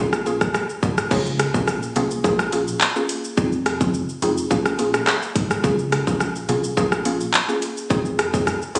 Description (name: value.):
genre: dancehall.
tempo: 106 BPM.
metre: 4/4.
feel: straight.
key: Bb minor.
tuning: A4 = 440 Hz.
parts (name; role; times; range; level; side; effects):
mallet-like synth pluck; accompaniment; 0.0-8.8 s; Bb3 to Ab4; -25 LUFS; equal; chorus, phaser.
plucky analog bass; bass; 0.0-8.8 s; F1 to Db2; -29 LUFS; equal; none.
island pop drum kit; drums; 0.1-8.8 s; crash cymbal, handclaps, hi-hat, kick drum, rim click, shaker; -24 LUFS; equal; none.
room: moderate lush hall reverb, RT60 1.7 s, digital ambience.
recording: recorded on a phone in the room, studio reverb, compression.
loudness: -21 LUFS.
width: mono.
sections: 0.0-1.1 A section; 1.1-8.8 B section.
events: none.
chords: 0.0 Bbm7; 1.1 Db6; 2.2 Bbm7; 3.4 Fm7; 4.5 Bbm7; 5.6 Db6; 6.8 Bbm7; 7.9 Fm7.